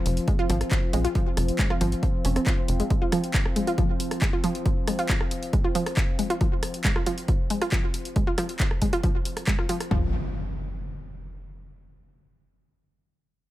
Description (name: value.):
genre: driving peak-time techno.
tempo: 137 BPM.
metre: 4/4.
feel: straight.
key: F minor.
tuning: A4 = 438 Hz.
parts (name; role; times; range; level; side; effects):
analog drone; drone; 0.0-10.0 s; F3 to C4; -33 LUFS; left 1 dB; chorus, sidechain pumping.
tight sequencer bass; bass; 0.1-2.8, 9.9-10.1 s; F1 to Bb1; -25 LUFS; equal; sidechain pumping.
punchy analog drum machine; drums; 0.1-9.9 s; handclaps, hi-hat, rim click; -31 LUFS; equal; sidechain pumping on hats, sidechain pumping on cymbals.
analog pluck; riff; 0.3-10.1 s; F3 to F4; -29 LUFS; equal; chorus, sidechain pumping, digital delay.
punchy analog drum machine; drums; 0.3-10.0 s; kick drum, toms; -24 LUFS; equal; none.
filtered dub chord stab; stabs; 0.9-1.1 s; C4 to Ab4; -37 LUFS; equal; phaser, ensemble chorus, sidechain pumping, tape echo.
impact; sound effects; 9.9-11.7 s; none; -33 LUFS; equal; none.
room: little or no reverb.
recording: none.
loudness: -22 LUFS.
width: side -15 dB against mid.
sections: 0.0-9.9 A section; 9.9-11.7 B section.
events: none.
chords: 0.0 F5; 9.9 N.C..